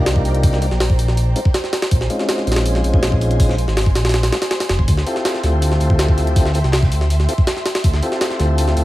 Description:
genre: drum and bass, jungle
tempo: 162 BPM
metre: 4/4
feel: straight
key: unclear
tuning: A4 = 440 Hz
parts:
  - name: ethereal airy pad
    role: sustained chords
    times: 0.0-8.8 s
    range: C5 to C6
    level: -29 LUFS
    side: right 2 dB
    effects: ensemble chorus, built-in reverb, tremolo
  - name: mellow tonewheel organ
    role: stabs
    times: 0.0-8.8 s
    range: Ab3 to A4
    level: -23 LUFS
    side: left 1 dB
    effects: overdrive, fast rotary speaker, vintage 12-bit sampler grit, dub echo
  - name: dark detuned saw bass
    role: bass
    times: 0.0-8.8 s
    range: F1 to D2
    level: -17 LUFS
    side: equal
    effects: none
  - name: jungle sampler-style drum kit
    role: drums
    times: 0.1-8.8 s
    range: hi-hat, kick drum, snare drum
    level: -18 LUFS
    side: equal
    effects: studio reverb
  - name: crunchy breakbeat drum kit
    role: drums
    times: 4.9-8.8 s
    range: hi-hat, snare drum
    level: -33 LUFS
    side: left 1 dB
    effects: high-pass filter on hats, studio reverb, high-pass filter on snare, high-pass filter on room
room: digital ambience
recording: vinyl crackle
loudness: -14 LUFS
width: side -16 dB against mid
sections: 0.0-8.8 A section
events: none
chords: 0.0 Cm11; 1.2 Bbm11; 4.9 Dm11

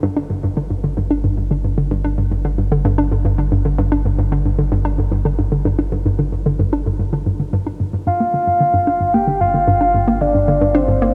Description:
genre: ambient, sequencer-driven space music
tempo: 112 BPM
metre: 4/4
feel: straight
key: unclear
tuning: A4 = 440 Hz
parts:
  - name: hollow square pluck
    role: riff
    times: 0.0-11.1 s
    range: G2 to D4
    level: -20 LUFS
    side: equal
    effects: chorus, tape echo
  - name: round analog bass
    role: bass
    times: 0.0-11.1 s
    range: G1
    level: -24 LUFS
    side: equal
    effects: none
  - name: soft octave-layered synth lead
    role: melody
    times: 8.1-11.1 s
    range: C5 to G5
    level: -18 LUFS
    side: equal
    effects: chorus, tape echo
room: moderate huge ambient reverb, RT60 7.4 s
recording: none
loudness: -17 LUFS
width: mono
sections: 0.0-11.1 A section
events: none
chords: 0.0 G5

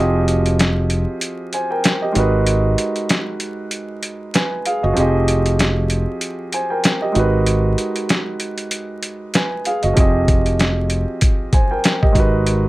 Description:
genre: hip hop, boom-bap hip-hop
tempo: 96 BPM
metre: 4/4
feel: swing 57% on 16ths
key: F minor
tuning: A4 = 440 Hz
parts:
  - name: dark baby grand piano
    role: accompaniment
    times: 0.0-12.7 s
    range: F3 to Ab5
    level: -20 LUFS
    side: right 1 dB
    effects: high-pass filter, low-pass filter
  - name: fingered electric bass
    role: bass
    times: 0.0-12.7 s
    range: F1 to Ab1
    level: -18 LUFS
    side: equal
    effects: none
  - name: boom bap sampler-style drum kit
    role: drums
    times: 0.3-12.6 s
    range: hi-hat, kick drum, snare drum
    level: -18 LUFS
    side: equal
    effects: none
room: light reverb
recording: vinyl crackle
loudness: -16 LUFS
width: side -18 dB against mid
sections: 0.0-12.7 A section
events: break 0.0-10.0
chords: 0.0 Fm9; 2.2 Abm9; 5.0 Fm9; 7.2 Abm9; 10.0 Fm9; 12.2 Abm9

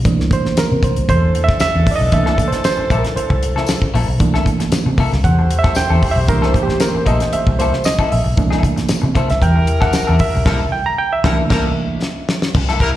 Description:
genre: funk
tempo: 115 BPM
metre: 4/4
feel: straight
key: C mixolydian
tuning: A4 = 441 Hz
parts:
  - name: barky reed electric piano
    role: stabs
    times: 0.0-12.4 s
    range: E3 to Bb5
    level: -19 LUFS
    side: right 4 dB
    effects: overdrive, slapback echo
  - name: vintage muted fingered electric bass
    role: bass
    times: 0.0-12.9 s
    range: Bb1 to C3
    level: -17 LUFS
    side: equal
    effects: none
  - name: damped 70s drum kit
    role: drums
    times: 0.1-13.0 s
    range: crash cymbal, hi-hat, kick drum, snare drum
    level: -18 LUFS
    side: left 1 dB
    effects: none
  - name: tambourine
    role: percussion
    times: 0.6-10.1 s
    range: none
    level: -31 LUFS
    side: left 6 dB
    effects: none
  - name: warm horn section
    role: second line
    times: 1.1-12.9 s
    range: E3 to C5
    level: -24 LUFS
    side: left 2 dB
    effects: slapback echo
  - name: clean electric guitar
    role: accompaniment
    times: 2.1-12.9 s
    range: Bb3 to A4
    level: -23 LUFS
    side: left 6 dB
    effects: lush chorus, slapback echo
room: light reverb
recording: live gig heard through the venue's PA, recital hall reverb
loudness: -13 LUFS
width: side -14 dB against mid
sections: 0.0-12.5 A section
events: break 0.0-2.1; reed electric piano solo 0.0-12.5; band accent 10.5-12.5; drum fill 12.0-12.5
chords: 0.0 C13

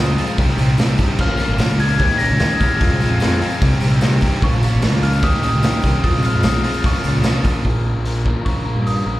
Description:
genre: indie rock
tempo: 149 BPM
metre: 4/4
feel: straight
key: Bb dorian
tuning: A4 = 443 Hz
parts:
  - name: glockenspiel with rubber mallets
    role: melody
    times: 0.0-9.2 s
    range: Db6 to Bb6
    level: -24 LUFS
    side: left 2 dB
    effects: slapback echo
  - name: crunchy overdriven guitar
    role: riff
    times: 0.0-9.2 s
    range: Bb2 to Bb4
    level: -23 LUFS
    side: left 3 dB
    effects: slapback echo
  - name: overdriven semi-hollow guitar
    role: riff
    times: 0.0-7.6 s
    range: Bb2 to G4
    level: -25 LUFS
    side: right 5 dB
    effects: wide subtle chorus, slapback echo
  - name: fuzz fingered electric bass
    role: bass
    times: 0.0-9.2 s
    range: Ab1 to Bb2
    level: -19 LUFS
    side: equal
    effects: overdrive
  - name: raw garage drum kit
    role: drums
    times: 0.2-9.0 s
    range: crash cymbal, hi-hat, kick drum, snare drum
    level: -19 LUFS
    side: equal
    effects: none
  - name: tambourine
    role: percussion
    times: 0.2-7.6 s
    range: none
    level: -39 LUFS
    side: left 2 dB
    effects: none
room: small room ambience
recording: live gig heard through the venue's PA, club reverb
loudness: -14 LUFS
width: side -16 dB against mid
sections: 0.0-7.6 A section; 7.6-9.2 B section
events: none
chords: 0.4 Cm; 1.2 Bbm7; 2.0 Eb5; 2.8 Fm; 3.6 Cm; 4.4 Bbm7; 5.2 Eb5; 6.0 Fm7; 6.8 Bbm

